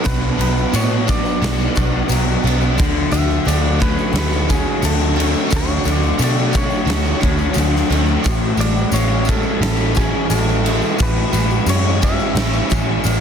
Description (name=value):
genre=rock, shoegaze and dream pop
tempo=88 BPM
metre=4/4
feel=straight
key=A major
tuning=A4 = 444 Hz
part: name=direct-recorded clean electric guitar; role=melody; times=0.0-13.2 s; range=G#4 to E5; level=-27 LUFS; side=equal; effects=analog delay
part: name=phased string machine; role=sustained chords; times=0.0-13.2 s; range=F#4 to C#6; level=-28 LUFS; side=equal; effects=ensemble chorus, phaser
part: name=picked twelve-string acoustic guitar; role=arpeggios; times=0.0-13.2 s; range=E3 to G#4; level=-30 LUFS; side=left 1 dB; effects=none
part: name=overdriven electric guitar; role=riff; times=0.0-13.2 s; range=A2 to E4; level=-22 LUFS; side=right 14 dB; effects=reverse reverb
part: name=raw garage guitar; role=riff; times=0.0-13.2 s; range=A2 to F#4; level=-23 LUFS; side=left 12 dB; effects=overdrive, lush chorus
part: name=tambourine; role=percussion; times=0.0-13.2 s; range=none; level=-34 LUFS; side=left 8 dB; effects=none
part: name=vintage muted picked electric bass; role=bass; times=0.1-13.2 s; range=A1 to B2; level=-19 LUFS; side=equal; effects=none
part: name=huge arena drum kit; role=drums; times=0.1-13.2 s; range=crash cymbal, kick drum, snare drum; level=-21 LUFS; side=left 1 dB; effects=none
room=small room ambience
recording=dense, heavily limited modern master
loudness=-14 LUFS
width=side -7 dB against mid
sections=0.0-13.2 A section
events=none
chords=0.0 Bm; 2.8 Dmaj7; 8.2 Amaj7